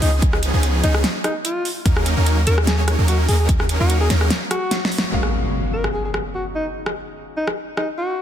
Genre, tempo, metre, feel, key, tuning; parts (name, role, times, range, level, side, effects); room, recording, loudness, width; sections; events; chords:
future bass; 147 BPM; 4/4; swing 54% on 16ths, half-time; F# major; A4 = 440 Hz
dark alto saxophone; melody; 0.0-8.2 s; D#4 to A#4; -25 LUFS; left 1 dB; sidechain pumping, ping-pong delay
supersaw chords; riff; 0.0-4.3 s; E#3 to C#5; -24 LUFS; right 1 dB; sidechain pumping
warm 808-style bass; bass; 0.0-4.3 s; C#2 to D#2; -18 LUFS; equal; sidechain pumping
pop drum kit; drums; 0.0-7.9 s; hi-hat, rim click, snare drum; -24 LUFS; equal; overdrive, soft clipping on snare
electronic kick drum; drums; 0.2-3.6 s; -18 LUFS; equal; overdrive
clear concert grand piano; accompaniment; 5.1-8.2 s; F#3 to E#5; -32 LUFS; left 4 dB; sidechain pumping, ping-pong delay
impact; sound effects; 5.1-6.8 s; -25 LUFS; equal
light reverb, digital ambience; dense, heavily limited modern master; -17 LUFS; side -10 dB against mid
0.0-5.1 A section; 5.1-8.2 B section
drop 0.0-5.1; drum fill 4.7-5.1; band accent 5.0; impact 5.1-6.8
0.0 C#9; 1.7 D#m7; 5.1 F#maj9